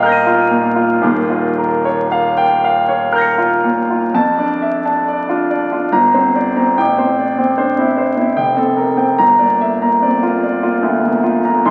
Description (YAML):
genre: classical, impressionist solo piano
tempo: 54-76 BPM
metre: 3/4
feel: rubato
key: unclear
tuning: A4 = 440 Hz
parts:
  - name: clear grand piano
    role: solo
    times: 0.0-11.7 s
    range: Eb1 to Eb7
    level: -15 LUFS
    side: equal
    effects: none
room: wet recital hall reverb, RT60 1.6 s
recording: very old 78 rpm record, vinyl crackle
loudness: -15 LUFS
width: mono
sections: 0.0-4.1 A section; 4.1-11.7 B section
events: none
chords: 0.0 Ebadd9; 1.0 Eb9; 4.1 F6; 5.9 Gmadd11; 6.8 Am7; 8.4 Fadd9; 9.2 Gm7